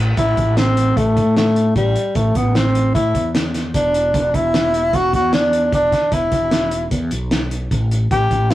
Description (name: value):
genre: progressive instrumental, band music in an uneven meter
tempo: 151 BPM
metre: 5/4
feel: straight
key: A dorian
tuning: A4 = 441 Hz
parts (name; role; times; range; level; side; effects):
- fretless electric bass; bass; 0.0-8.5 s; E1 to A2; -20 LUFS; equal; none
- breathy tenor saxophone; melody; 0.2-8.5 s; G3 to G4; -16 LUFS; equal; none
- cloth-damped thuddy drum kit; drums; 0.2-8.5 s; hi-hat, kick drum, snare drum; -21 LUFS; equal; none
room: moderate small room ambience, RT60 0.5 s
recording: rough rehearsal-room recording, warm saturation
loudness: -14 LUFS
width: side -15 dB against mid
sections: 0.0-8.5 A section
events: none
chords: 0.0 Am; 3.7 E5; 7.7 A7(no3)